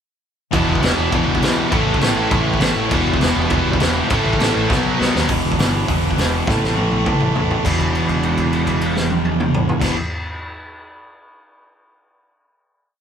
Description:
punk rock; 203 BPM; 4/4; straight; E dorian; A4 = 441 Hz
distorted electric guitar; riff; 0.5-5.3 s; A2 to E4; -24 LUFS; equal; overdrive
overdriven electric guitar; riff; 0.5-10.0 s; E2 to B3; -22 LUFS; left 6 dB
overdriven electric guitar; riff; 0.5-10.0 s; E2 to B3; -22 LUFS; right 8 dB
growling picked electric bass; bass; 0.5-9.9 s; E1 to D#2; -23 LUFS; equal; overdrive
raw garage drum kit; drums; 0.5-9.9 s; crash cymbal, hi-hat, kick drum, snare drum, toms; -20 LUFS; equal
light reverb; band playing live in one room; -15 LUFS; side -8 dB against mid
0.5-5.3 riff; 5.3-7.6 outro; 7.6-10.0 final chord
drum fill 4.7-5.3, 6.5-7.6; held note 7.6-9.8
0.5 Em; 1.7 A; 2.9 Em; 4.1 A; 4.7 B; 5.3 Em; 6.5 A5; 7.6 E5

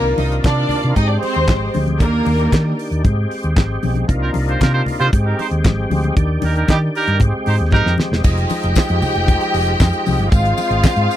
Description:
disco; 115 BPM; 4/4; straight; A4 = 440 Hz
clear studio string section; second line; 0.0-2.7, 8.2-11.2 s; Bb3 to G5; -20 LUFS; equal
overdriven tonewheel organ; sustained chords; 0.0-11.2 s; C3 to G4; -23 LUFS; equal; chorus vibrato, slow rotary speaker
hollow-body short-scale fingered electric bass; bass; 0.0-11.1 s; Fb1 to Eb3; -18 LUFS; equal
damped 70s drum kit; drums; 0.2-11.2 s; crash cymbal, handclaps, hi-hat, kick drum, snare drum; -16 LUFS; equal
congas; percussion; 0.2-11.0 s; -25 LUFS; left 5 dB
clear horn section; stabs; 4.2-7.9 s; G3 to C5; -19 LUFS; right 4 dB
tambourine; percussion; 8.2-11.2 s; -34 LUFS; left 29 dB
little or no reverb; dry, close 1970s-style studio recording; -14 LUFS; side -12 dB against mid
0.0-8.2 A section; 8.2-11.2 B section
drum fill 7.7-8.2
0.0 Cm11; 1.0 Abmaj7; 2.0 Ebmaj7; 3.0 Abmaj7; 4.1 Cm11; 5.1 Abmaj7; 6.2 Ebmaj7; 7.2 Abmaj7; 8.2 Fm7; 10.3 Ab6

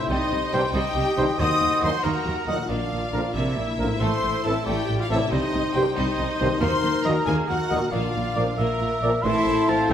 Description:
cinematic; 92 BPM (dotted quarters); 6/8; straight; A4 = 439 Hz
bright studio violin section; melody; 0.0-9.9 s; Bb4 to D#6; -31 LUFS; left 3 dB
mellow hollow silver concert flute; second line; 0.0-9.0 s; Eb5 to D#6; -32 LUFS; left 1 dB
rich symphonic violin section; second line; 0.0-9.9 s; G3 to E5; -32 LUFS; left 1 dB
warm oboe; second line; 0.0-9.9 s; A#4 to C6; -29 LUFS; right 2 dB
rich symphonic viola section; accompaniment; 0.0-9.9 s; E3 to D#5; -30 LUFS; equal
concert harp; arpeggios; 0.0-9.9 s; A2 to A5; -31 LUFS; left 7 dB
rich symphonic double bass section; bass; 0.1-9.9 s; A1 to D#2; -30 LUFS; right 2 dB
warm chamber cello section; bass; 0.1-9.9 s; A2 to A4; -30 LUFS; right 2 dB
bright trombone section; sustained chords; 0.5-9.1 s; F2 to G3; -35 LUFS; right 2 dB
warm French horn section; sustained chords; 0.5-9.9 s; Bb3 to Bb4; -31 LUFS; left 3 dB
mellow trumpet; stabs; 0.5-9.9 s; A4 to D#5; -32 LUFS; right 2 dB
wet recital hall reverb, RT60 1.6 s; -21 LUFS; side -9 dB against mid
0.0-9.3 A section
0.1 Cm; 1.4 D#m; 2.7 Bb; 4.0 Am; 5.3 Cm; 6.6 D#m; 7.9 Bb; 9.3 Am

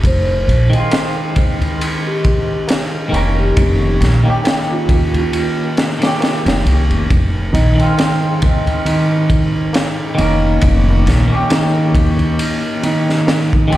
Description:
trip hop; 68 BPM; 4/4; swing 56% on 16ths; F minor; A4 = 443 Hz
upright bass; bass; 0.0-13.8 s; F1 to Eb2; -15 LUFS; equal
crunchy breakbeat drum kit; drums; 0.0-13.8 s; kick drum, ride cymbal, snare drum; -18 LUFS; equal
vibraphone with soft mallets; melody; 0.1-5.5 s; F4 to C5; -23 LUFS; right 2 dB; tape echo
tabla; percussion; 0.5-13.5 s; -24 LUFS; left 1 dB
clean electric guitar; accompaniment; 0.7-13.8 s; Eb3 to Bb4; -19 LUFS; left 1 dB; tremolo, tape echo
felt-muted upright piano; arpeggios; 7.5-13.8 s; Eb3; -17 LUFS; right 2 dB; vintage 12-bit sampler grit, tape echo
small room ambience; played on a big sound system in a bare room, stone room reverb; -12 LUFS; side -15 dB against mid
0.0-13.8 A section
0.0 Fm7; 3.6 Eb7/F; 7.1 Fm7; 10.6 Eb7/F

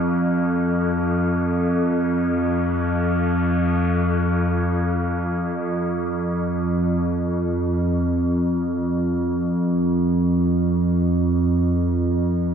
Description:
world meditative, free-time meditation music; free time; A4 = 440 Hz
evolving wavetable pad; solo; 0.0-12.5 s; F2; -19 LUFS; equal; chorus, built-in reverb, analog delay
wet plate reverb, RT60 3.1 s; dreamy mix soaked in reverb; -19 LUFS; side -7 dB against mid
0.0-2.1 A section; 2.1-12.5 A section

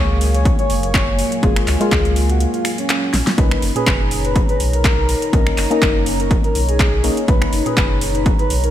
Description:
deep house; 123 BPM; 4/4; swing 55% on 16ths; B lydian; A4 = 440 Hz
breathy flute-like synth lead; melody; 0.0-8.7 s; C#4 to C#5; -23 LUFS; left 1 dB; analog chorus, analog delay
dark analog pad; sustained chords; 0.0-8.7 s; F#3 to A#5; -26 LUFS; equal; chorus, phaser, vintage 12-bit sampler grit, sidechain pumping
percussive organ stab; stabs; 0.0-8.7 s; A#2 to G#4; -24 LUFS; left 2 dB; chorus, sidechain pumping, tape echo
warm sub bass; bass; 0.0-8.7 s; F#1 to C#2; -20 LUFS; equal; tube saturation, sidechain pumping
deep house drum kit; drums; 0.2-8.7 s; finger snaps, handclaps, hi-hat, snare drum; -22 LUFS; equal; studio reverb
electronic kick drum; drums; 0.5-8.4 s; -17 LUFS; equal; overdrive, studio reverb
light reverb, digital ambience; -14 LUFS; side -11 dB against mid
0.0-8.7 A section
break 2.4-3.4; drum fill 3.1
0.0 F#maj9; 3.4 Bmaj9

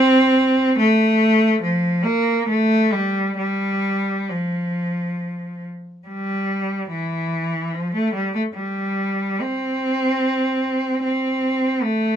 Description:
classical, baroque-style suite movement for unaccompanied cello; 65-76 BPM; 3/4; rubato; F major, C major from 6.1 s; A4 = 439 Hz
clear cello; solo; 0.0-12.2 s; E3 to C4; -18 LUFS; equal
light reverb; close, detailed microphones; -18 LUFS; side -9 dB against mid
0.0-6.1 A section; 6.1-12.2 A section

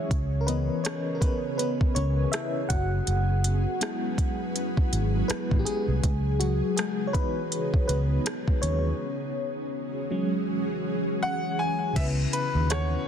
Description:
contemporary R&B; 81 BPM; 4/4; swing 58% on 16ths; C# minor; A4 = 440 Hz
FM electric piano with tremolo; accompaniment; 0.0-13.1 s; C#3 to F#5; -30 LUFS; left 2 dB; phaser
ethereal airy pad; sustained chords; 0.0-13.1 s; C#3 to B4; -33 LUFS; right 1 dB; ensemble chorus, built-in reverb, tremolo
vintage muted fingered electric bass; bass; 0.1-13.0 s; F#1 to D#2; -26 LUFS; equal
smooth R&B drum kit; drums; 0.1-12.9 s; crash cymbal, hi-hat, kick drum, rim click; -27 LUFS; equal; vintage 12-bit sampler grit
clear concert grand piano; melody; 11.2-13.1 s; B4 to G#5; -29 LUFS; left 2 dB; ping-pong delay
mallet-like synth pluck; texture; 12.7-13.1 s; F#5; -40 LUFS; right 9 dB; chorus
light reverb; dense, heavily limited modern master; -24 LUFS; side -8 dB against mid
0.0-12.0 A section; 12.0-13.1 B section
FM electric piano solo 0.0-12.0; break 9.0-12.0
0.1 C#m9; 2.7 F#7sus4; 6.0 C#m9; 9.0 E69; 12.0 C#m9

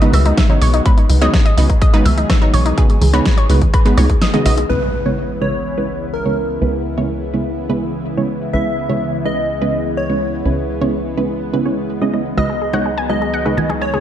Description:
progressive house; 125 BPM; 4/4; straight; C# minor; A4 = 440 Hz
lush unison pad; sustained chords; 0.0-14.0 s; C#3 to G#4; -24 LUFS; left 1 dB; chorus, phaser, sidechain pumping
analog pluck; arpeggios; 0.0-4.7, 12.4-14.0 s; G#3 to G#5; -21 LUFS; left 1 dB; chorus, sidechain pumping, tape echo
wide unison pluck; stabs; 0.0-14.0 s; C#3 to D#5; -20 LUFS; right 3 dB; sidechain pumping, tape echo
big-room dance drum kit; drums; 0.0-4.7 s; hi-hat, rim click, snare drum; -22 LUFS; left 1 dB; sidechain pumping on hats, low-pass filter on hats, small room ambience, low-pass filter on snare
tight sequencer bass; bass; 0.1-14.0 s; B1 to C#2; -19 LUFS; equal; sidechain pumping
congas and bongos; percussion; 0.1-4.7, 12.7-14.0 s; -24 LUFS; right 2 dB
electronic kick drum; drums; 0.4-4.2 s; -13 LUFS; equal; small room ambience
plucky unison lead; melody; 4.7-14.0 s; A#4 to E5; -22 LUFS; equal; tape echo
impact; sound effects; 4.7-6.6 s; -26 LUFS; equal
light reverb; dark, warm production; -14 LUFS; side -10 dB against mid
0.0-4.7 A section; 4.7-14.0 B section
break 4.2-4.7; impact 4.7-6.6
0.0 G#m7; 4.7 C#m7; 12.4 G#m7/C#

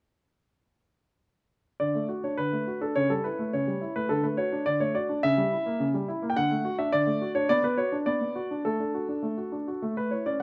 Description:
classical-period piano sonatina; 105 BPM; 4/4; rubato; D major; A4 = 440 Hz
clear baby grand piano; solo; 1.8-10.4 s; C#3 to G5; -28 LUFS; equal
moderate large studio reverb, RT60 1.5 s; dark, warm production; -28 LUFS; mono
1.8-10.4 A section
1.8 D; 3.0 A7/C#; 4.1 D; 5.2 C#dim7; 6.4 D; 7.5 Bm; 8.6 D/A; 9.8 A

